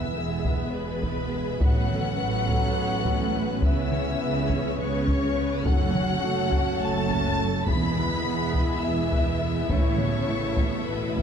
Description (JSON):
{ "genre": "cinematic, epic orchestral film score", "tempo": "207 BPM (eighths)", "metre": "7/8", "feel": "straight", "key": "unclear", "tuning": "A4 = 442 Hz", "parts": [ { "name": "warm symphonic violin section", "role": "melody", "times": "0.0-11.2 s", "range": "B5 to B6", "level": "-37 LUFS", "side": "left 4 dB", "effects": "none" }, { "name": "mellow small flute group", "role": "second line", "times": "0.0-11.2 s", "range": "B4 to B5", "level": "-34 LUFS", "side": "left 4 dB", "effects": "none" }, { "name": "warm symphonic violin section", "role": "second line", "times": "0.0-11.2 s", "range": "B4 to B5", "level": "-35 LUFS", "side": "left 3 dB", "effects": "none" }, { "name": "warm symphonic viola section", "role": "accompaniment", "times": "0.0-11.2 s", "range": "G#3 to C#5", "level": "-34 LUFS", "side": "right 2 dB", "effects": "none" }, { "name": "clear studio string section", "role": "sustained chords", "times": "0.0-11.2 s", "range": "B3 to E5", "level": "-35 LUFS", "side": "equal", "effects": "none" }, { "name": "dark trombone section", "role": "sustained chords", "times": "0.0-11.2 s", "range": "B2 to B3", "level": "-34 LUFS", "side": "right 2 dB", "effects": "none" }, { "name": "mellow French horn section", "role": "sustained chords", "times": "0.0-11.2 s", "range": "G#3 to E4", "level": "-33 LUFS", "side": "left 4 dB", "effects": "none" }, { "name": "warm symphonic cello section", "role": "bass", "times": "0.0-11.2 s", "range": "E2 to C#3", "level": "-31 LUFS", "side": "right 3 dB", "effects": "none" }, { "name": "warm symphonic double bass section", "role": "bass", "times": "0.0-11.2 s", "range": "E1 to C#2", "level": "-32 LUFS", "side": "right 4 dB", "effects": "none" }, { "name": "taiko ensemble", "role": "drums", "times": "0.4-11.2 s", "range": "none", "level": "-27 LUFS", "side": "equal", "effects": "none" }, { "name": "timpani", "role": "percussion", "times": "5.7-6.5 s", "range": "F#2", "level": "-36 LUFS", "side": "left 2 dB", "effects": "none" } ], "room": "wet concert hall reverb, RT60 2.3 s", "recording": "dark, warm production", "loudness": "-22 LUFS", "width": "side -7 dB against mid", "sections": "0.0-11.2 A section", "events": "none", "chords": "0.0 E; 1.6 Aadd9; 3.6 C#m7; 5.7 F#m; 7.7 E; 9.7 Aadd9" }